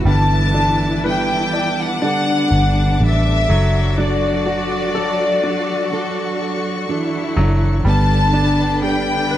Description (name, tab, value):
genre	pop ballad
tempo	62 BPM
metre	4/4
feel	straight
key	D major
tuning	A4 = 440 Hz
part	warm studio cello section	second line	0.0-9.4 s	D3 to F#4	-24 LUFS	equal	none
part	bright grand piano	accompaniment	0.0-9.4 s	F#3 to D5	-25 LUFS	left 2 dB	none
part	warm studio string section	sustained chords	0.0-9.4 s	A4 to D6	-29 LUFS	left 2 dB	none
part	fingerpicked plugged-in steel-string acoustic guitar	arpeggios	0.0-9.4 s	F#3 to A4	-24 LUFS	right 5 dB	tape echo
part	vintage muted fingered electric bass	bass	0.0-9.4 s	F#1 to A1	-17 LUFS	equal	none
part	warm studio violin section	melody	0.1-9.4 s	D5 to A5	-20 LUFS	left 2 dB	none
room	light reverb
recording	dry, close 1970s-style studio recording, lossy compression artefacts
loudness	-15 LUFS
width	side -12 dB against mid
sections	0.0-9.4 A section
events	none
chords	0.1 Gadd9; 3.5 D/F#; 7.9 Gadd9